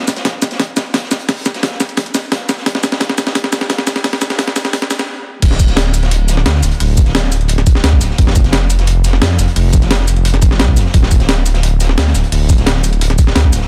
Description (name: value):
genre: liquid drum and bass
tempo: 174 BPM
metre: 4/4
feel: straight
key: unclear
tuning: A4 = 439 Hz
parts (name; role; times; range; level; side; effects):
- breakbeat sampler-style drum kit; drums; 0.1-13.6 s; crash cymbal, hi-hat, shaker, snare drum; -19 LUFS; equal; none
- crunchy breakbeat drum kit; drums; 0.1-13.7 s; hi-hat, snare drum; -28 LUFS; equal; high-pass filter on hats, high-pass filter on snare, high-pass filter on room
- electronic kick drum; drums; 0.3-13.5 s; none; -14 LUFS; equal; high-pass filter on kick
- dark detuned saw bass; bass; 5.4-13.6 s; D1 to F2; -15 LUFS; equal; none
room: small room ambience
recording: dense, heavily limited modern master, high-pass filter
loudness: -14 LUFS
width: mono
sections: 0.0-5.4 A section; 5.4-13.7 B section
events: build-up 0.0-5.4; drum fill 0.0-5.1; stop 5.1-5.4; drop 5.4-13.7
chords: none